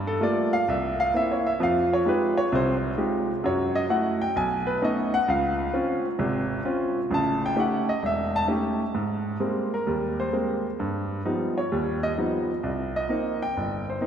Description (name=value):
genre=jazz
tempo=130 BPM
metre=4/4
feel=swing 67% on 8ths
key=Ab major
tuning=A4 = 442 Hz
part: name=clear baby grand piano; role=solo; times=0.0-14.1 s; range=E1 to A5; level=-23 LUFS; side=equal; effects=none
room=wet church reverb, RT60 3.3 s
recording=recorded in a church or concert hall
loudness=-23 LUFS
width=side -8 dB against mid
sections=0.0-9.0 A section; 9.0-14.1 B section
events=grand piano solo 0.0-9.0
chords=0.0 Gm9; 0.7 C7; 1.6 Fm9; 3.4 Gbm7; 4.4 B9; 5.3 Dbmaj7; 7.1 A7#11; 9.0 Abmaj9; 10.8 Gaug7; 12.6 Cm7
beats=0.21 0.67 1.13 | 1.59 2.06 2.52 2.98 | 3.44 3.90 4.36 4.82 | 5.28 5.74 6.20 6.66 | 7.12 7.57 8.03 8.49 | 8.95 9.41 9.87 10.33 | 10.79 11.25 11.71 12.17 | 12.63 13.09 13.55 14.01